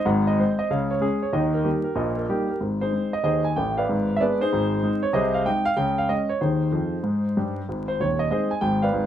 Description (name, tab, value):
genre	jazz, stride piano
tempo	189 BPM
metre	4/4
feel	swing 64% on 8ths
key	Ab major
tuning	A4 = 438 Hz
part	warm grand piano	solo	0.0-9.1 s	Eb1 to Ab5	-21 LUFS	equal	none
room	moderate club reverb, RT60 0.7 s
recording	vinyl crackle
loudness	-21 LUFS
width	side -10 dB against mid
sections	0.0-2.6 A section; 2.6-9.1 B section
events	grand piano fill 6.7-7.7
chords	0.1 Ab7; 0.7 Db; 1.3 Eb; 2.6 Ab; 3.9 Abm; 4.5 Ab; 5.1 Ab/C; 5.8 Db5; 6.4 Ab/Eb; 7.0 Eb; 7.7 Ab